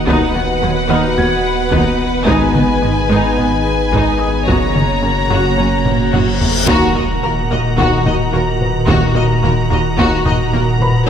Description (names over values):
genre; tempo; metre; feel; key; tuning
cinematic, hybrid orchestral and electronic film score; 109 BPM; 4/4; straight; Eb minor from 6.7 s; A4 = 441 Hz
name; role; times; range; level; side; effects
rich symphonic violin section; melody; 0.0-11.0 s; F#5 to Bb5; -21 LUFS; left 2 dB; none
warm symphonic violin section; second line; 0.0-10.6 s; Gb4 to Eb5; -23 LUFS; left 1 dB; none
soft additive organ-like pad; sustained chords; 0.0-11.1 s; Bb2 to Gb5; -19 LUFS; right 1 dB; ensemble chorus, built-in reverb
warm French horn section; sustained chords; 0.0-10.2 s; Bb3 to Gb4; -24 LUFS; left 2 dB; none
warm sub bass; bass; 0.0-11.1 s; Eb1 to Ab1; -23 LUFS; equal; none
felt-muted upright piano; texture; 0.0-11.1 s; Cb5 to Ab6; -27 LUFS; left 1 dB; ping-pong delay
rich symphonic viola section; accompaniment; 0.1-10.6 s; F#3 to Gb4; -22 LUFS; equal; none
analog pluck; arpeggios; 0.1-10.7 s; Eb3 to F#4; -25 LUFS; left 4 dB; chorus, ping-pong delay
rich symphonic cello section; bass; 0.1-10.6 s; D#2 to Ab2; -22 LUFS; right 2 dB; none
warm symphonic double bass section; bass; 0.1-10.6 s; Gb1 to D#2; -23 LUFS; right 3 dB; none
solo taiko drums; drums; 0.1-11.1 s; none; -20 LUFS; equal; none
reverse cymbal and impact; sound effects; 6.0-8.9 s; none; -23 LUFS; left 3 dB; none
room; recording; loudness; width
moderate scoring stage reverb, RT60 1.9 s; none; -12 LUFS; side -8 dB against mid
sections
0.0-6.7 A section; 6.7-11.1 B section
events
drum fill 5.9-6.7; reverse cymbal 6.0-6.7; band accent 6.7-7.2; impact 6.7-8.9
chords
0.1 B/D#; 2.3 Abm; 4.5 Gb; 6.7 Ebm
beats
| 0.08 0.63 1.18 1.73 | 2.28 2.83 3.38 3.93 | 4.48 5.03 5.58 6.13 | 6.68 7.23 7.78 8.33 | 8.88 9.44 9.98 10.54 | 11.09